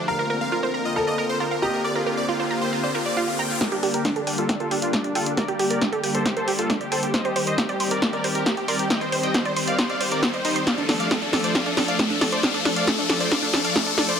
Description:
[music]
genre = uplifting trance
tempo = 136 BPM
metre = 4/4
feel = straight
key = G minor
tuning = A4 = 438 Hz
[part]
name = supersaw chords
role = melody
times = 0.0-14.2 s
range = D4 to G5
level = -26 LUFS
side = equal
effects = sidechain pumping, low-pass filter, digital delay
[part]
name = warm baby grand piano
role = second line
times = 0.1-2.2 s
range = G4 to Bb4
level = -28 LUFS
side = left 1 dB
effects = dub echo
[part]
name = lush unison pad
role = sustained chords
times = 0.1-14.1 s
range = D3 to A4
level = -28 LUFS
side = left 1 dB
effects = chorus, sidechain pumping
[part]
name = wide unison pluck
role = arpeggios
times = 0.1-14.0 s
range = A3 to C6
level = -29 LUFS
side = right 4 dB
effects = sidechain pumping, digital delay
[part]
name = riser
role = sound effects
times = 1.3-14.2 s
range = none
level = -30 LUFS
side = left 3 dB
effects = none
[part]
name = electronic kick drum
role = drums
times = 3.6-13.8 s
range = none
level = -32 LUFS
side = equal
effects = none
[part]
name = punchy analog drum machine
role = drums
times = 3.6-14.2 s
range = hi-hat, snare drum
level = -24 LUFS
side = equal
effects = low-pass filter on snare, low-pass filter on hats
[sound]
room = light reverb, digital ambience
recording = none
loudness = -20 LUFS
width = side -7 dB against mid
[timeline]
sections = 0.0-3.6 A section; 3.6-14.2 B section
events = riser 1.3-3.6, 3.6-14.2; build-up 3.6-14.2; drum fill 3.6-14.2; filter sweep on supersaw synth 3.6-14.2; filter sweep on synth arpeggio sound 3.6-14.2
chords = 0.1 Bbadd9; 3.6 Gm; 7.1 Cm; 10.7 Dm

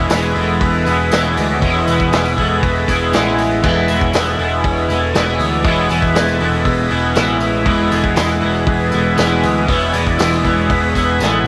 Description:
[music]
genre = psychedelic rock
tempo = 119 BPM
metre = 4/4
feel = straight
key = E major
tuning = A4 = 442 Hz
[part]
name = combo organ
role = sustained chords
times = 0.0-11.5 s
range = E3 to E5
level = -23 LUFS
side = equal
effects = none
[part]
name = twangy electric guitar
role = riff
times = 0.0-11.5 s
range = E3 to E4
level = -19 LUFS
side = equal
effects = rotary speaker, double-tracked
[part]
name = growling picked electric bass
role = bass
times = 0.0-11.5 s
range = E1 to D2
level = -24 LUFS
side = equal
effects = overdrive
[part]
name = tanpura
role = drone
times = 0.0-11.5 s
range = E2 to E3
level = -28 LUFS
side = equal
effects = none
[part]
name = vintage drum kit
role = drums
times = 0.1-11.3 s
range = crash cymbal, hi-hat, kick drum, snare drum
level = -23 LUFS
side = equal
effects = none
[part]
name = tambourine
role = percussion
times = 0.1-11.4 s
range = none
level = -38 LUFS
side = equal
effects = none
[sound]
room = wet echo chamber reverb, RT60 1.3 s, small room ambience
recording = none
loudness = -15 LUFS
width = mono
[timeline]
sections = 0.0-11.5 A section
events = transistor combo organ solo 0.0-11.5; drum fill 11.2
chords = 0.0 E

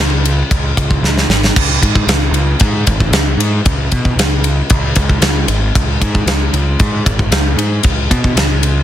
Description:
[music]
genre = heavy metal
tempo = 114 BPM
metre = 4/4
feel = straight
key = unclear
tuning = A4 = 442 Hz
[part]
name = fuzz picked electric bass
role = bass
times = 0.0-8.8 s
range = G#1 to B2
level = -15 LUFS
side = equal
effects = overdrive
[part]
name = big rock drum kit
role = drums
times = 0.3-8.8 s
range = crash cymbal, kick drum, ride cymbal, snare drum, splash cymbal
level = -13 LUFS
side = equal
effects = soft clipping on kick, soft clipping on snare
[sound]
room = little or no reverb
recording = dense, heavily limited modern master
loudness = -11 LUFS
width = side -11 dB against mid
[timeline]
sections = 0.0-8.8 A section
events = drum fill 1.0-1.6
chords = none

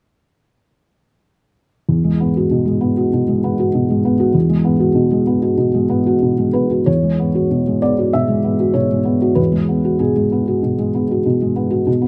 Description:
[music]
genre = neoclassical minimalist piano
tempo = 96 BPM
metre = 4/4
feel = rubato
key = unclear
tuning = A4 = 440 Hz
[part]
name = felt-muted upright piano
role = solo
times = 1.9-12.1 s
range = E2 to E5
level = -16 LUFS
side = equal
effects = none
[sound]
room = light reverb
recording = close, detailed microphones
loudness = -16 LUFS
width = mono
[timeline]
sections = 1.9-6.9 A section; 6.9-12.1 B section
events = none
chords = 1.9 Eadd9

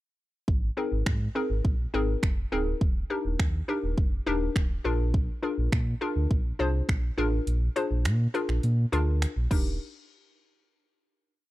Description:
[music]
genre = dance-pop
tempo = 103 BPM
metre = 4/4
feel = straight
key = unclear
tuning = A4 = 444 Hz
[part]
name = sub bass with octave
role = bass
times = 0.5-9.8 s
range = D1 to Bb2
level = -27 LUFS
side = equal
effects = sidechain pumping
[part]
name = pop drum kit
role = drums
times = 0.5-9.6 s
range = crash cymbal, finger snaps, hi-hat, kick drum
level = -27 LUFS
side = equal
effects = none
[part]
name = hollow square pluck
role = accompaniment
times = 0.8-9.8 s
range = C4 to C5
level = -30 LUFS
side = left 2 dB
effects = chorus, sidechain pumping
[sound]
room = little or no reverb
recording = dry, close 1970s-style studio recording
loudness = -25 LUFS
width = side -17 dB against mid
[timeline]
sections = 0.5-9.8 verse; 9.8-11.5 final hit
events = kick muted 7.5-9.8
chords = 0.5 Abadd9; 2.8 Ebmaj7; 4.8 Bb7; 9.5 Ebmaj7; 9.8 N.C.

